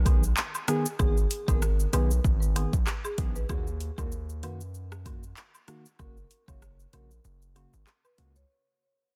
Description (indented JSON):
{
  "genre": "dancehall",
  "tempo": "96 BPM",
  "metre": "4/4",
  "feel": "swing 56% on 16ths",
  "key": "G# minor",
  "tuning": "A4 = 435 Hz",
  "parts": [
    { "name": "hard-hitting 808-style bass", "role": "bass", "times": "0.0-8.4 s", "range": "F#1 to F#2", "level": "-31 LUFS", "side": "equal", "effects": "none" },
    { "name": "percussive organ stab", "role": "accompaniment", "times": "0.1-8.4 s", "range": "C#3 to G#4", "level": "-36 LUFS", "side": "equal", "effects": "chorus" },
    { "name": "afro-pop drum kit", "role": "drums", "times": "0.1-8.5 s", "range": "handclaps, hi-hat, kick drum, rim click, shaker", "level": "-30 LUFS", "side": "equal", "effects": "soft clipping on snare" },
    { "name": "cabasa and woodblock", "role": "percussion", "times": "0.1-8.3 s", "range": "none", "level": "-42 LUFS", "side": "equal", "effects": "none" },
    { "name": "marimba with medium mallets", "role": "melody", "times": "1.0-8.5 s", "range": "G#4 to C#5", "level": "-42 LUFS", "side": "equal", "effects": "digital delay" }
  ],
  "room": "digital ambience",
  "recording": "dense, heavily limited modern master",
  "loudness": "-28 LUFS",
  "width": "mono",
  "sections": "0.0-8.5 A section",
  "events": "fade-out 0.0-8.5; break 7.2-8.5",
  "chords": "0.0 G#m; 3.5 D#m; 6.0 F#"
}